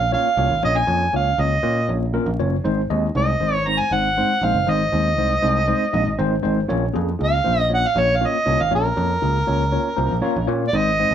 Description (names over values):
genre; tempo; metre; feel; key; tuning
uptempo 1960s-style soul; 119 BPM; 4/4; straight; Bb minor; A4 = 440 Hz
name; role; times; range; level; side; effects
overdriven harmonica; melody; 0.0-11.1 s; Bb4 to Bb5; -20 LUFS; right 2 dB; none
mellow tine electric piano; accompaniment; 0.0-11.1 s; Ab3 to Bb5; -23 LUFS; left 1 dB; fast stereo tremolo, tube saturation
picked electric bass; bass; 0.0-11.1 s; Gb1 to Bb2; -23 LUFS; equal; none
room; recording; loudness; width
moderate studio reverb, RT60 0.6 s; band playing live in one room, vinyl crackle; -17 LUFS; side -9 dB against mid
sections
0.0-10.7 A section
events
tine electric piano fill 9.7-10.7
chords
0.0 Bbm; 2.6 Ab; 6.7 Bbm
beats
0.12 | 0.62 1.13 1.64 2.14 | 2.65 3.15 3.66 4.16 | 4.67 5.17 5.68 6.19 | 6.69 7.20 7.70 8.21 | 8.71 9.22 9.73 10.23 | 10.74